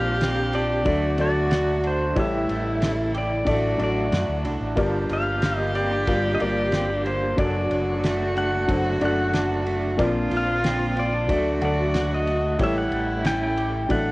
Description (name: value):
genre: acoustic folk-pop ballad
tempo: 92 BPM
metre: 4/4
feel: straight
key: unclear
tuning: A4 = 441 Hz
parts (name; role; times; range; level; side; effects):
- pedal steel guitar; melody; 0.0-14.1 s; C5 to G5; -27 LUFS; left 1 dB; cassette tape, tape echo
- dark cello; second line; 0.0-14.1 s; D4 to G4; -28 LUFS; right 1 dB; cassette tape
- warm upright piano; accompaniment; 0.0-14.1 s; F#1 to F#5; -27 LUFS; left 1 dB; cassette tape
- rich studio string section; sustained chords; 0.0-14.1 s; C#3 to F#4; -35 LUFS; left 1 dB; none
- electric guitar through a small old amp; arpeggios; 0.0-14.1 s; E3 to G4; -30 LUFS; right 2 dB; tremolo, cassette tape
- fingered electric bass; bass; 0.0-14.1 s; F#1 to F#2; -28 LUFS; equal; none
- cloth-damped thuddy drum kit; drums; 0.2-14.1 s; kick drum, ride cymbal, snare drum; -30 LUFS; equal; cassette tape
room: light reverb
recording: home recording on cassette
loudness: -20 LUFS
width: side -21 dB against mid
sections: 0.0-14.1 A section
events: none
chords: 0.0 Bbadd9; 0.9 D; 2.2 A7; 3.5 D/A; 4.8 Gm7; 7.4 D/F#; 10.0 Bbadd9; 11.3 D; 12.6 A7